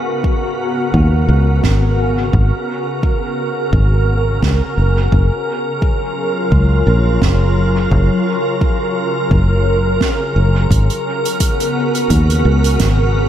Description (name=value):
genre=ambient dub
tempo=86 BPM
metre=4/4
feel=swing 56% on 16ths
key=G# dorian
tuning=A4 = 438 Hz
part: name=soft additive organ-like pad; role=sustained chords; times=0.0-13.3 s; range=C#3 to A#4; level=-17 LUFS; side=equal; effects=ensemble chorus, built-in reverb
part: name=soft synth bell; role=arpeggios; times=0.0-2.1 s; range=F#4 to A#5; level=-37 LUFS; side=right 1 dB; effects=none
part: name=electronic kick drum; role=drums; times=0.2-13.0 s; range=none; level=-17 LUFS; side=equal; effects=none
part: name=fingered electric bass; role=bass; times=0.9-13.3 s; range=F#1 to D#2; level=-13 LUFS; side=equal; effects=none
part: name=soft-mallet drum kit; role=drums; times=1.6-13.0 s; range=hi-hat, snare drum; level=-24 LUFS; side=right 6 dB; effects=dub echo
room=light reverb, small room ambience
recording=none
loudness=-13 LUFS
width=side -11 dB against mid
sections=0.0-13.3 A section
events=none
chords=0.0 G#m11; 5.1 F#maj7; 10.7 G#m11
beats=0.24 0.94 1.64 | 2.33 3.03 3.73 4.43 | 5.12 5.82 6.52 7.22 | 7.92 8.61 9.31 10.01 | 10.71 11.40 12.10 12.80